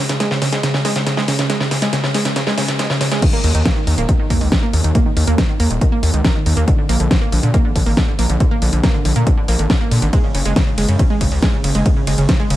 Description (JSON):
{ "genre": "uplifting trance", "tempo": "139 BPM", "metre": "4/4", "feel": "straight", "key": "Eb minor", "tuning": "A4 = 440 Hz", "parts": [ { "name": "wide unison pluck", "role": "arpeggios", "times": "0.0-12.5 s", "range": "Db3 to Bb3", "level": "-20 LUFS", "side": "right 2 dB", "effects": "cassette tape, sidechain pumping, digital delay" }, { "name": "big-room dance drum kit", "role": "drums", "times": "0.1-12.6 s", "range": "crash cymbal, hi-hat, ride cymbal, snare drum", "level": "-21 LUFS", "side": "equal", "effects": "high-pass filter on hats, high-pass filter on snare, high-pass filter on cymbals" }, { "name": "electronic kick drum", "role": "drums", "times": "3.2-12.4 s", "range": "none", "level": "-16 LUFS", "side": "equal", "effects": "none" }, { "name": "gritty driven synth bass", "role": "bass", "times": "3.4-12.6 s", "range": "Eb1 to Bb2", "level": "-16 LUFS", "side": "equal", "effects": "distortion, sidechain pumping" } ], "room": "light reverb", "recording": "none", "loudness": "-14 LUFS", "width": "side -14 dB against mid", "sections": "0.0-3.2 A section; 3.2-12.6 B section", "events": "build-up 0.0-3.2; drum fill 0.0-3.2; drop 3.2-12.6", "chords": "0.0 Db5; 3.2 Eb5; 6.7 Bb; 10.1 Gbsus2" }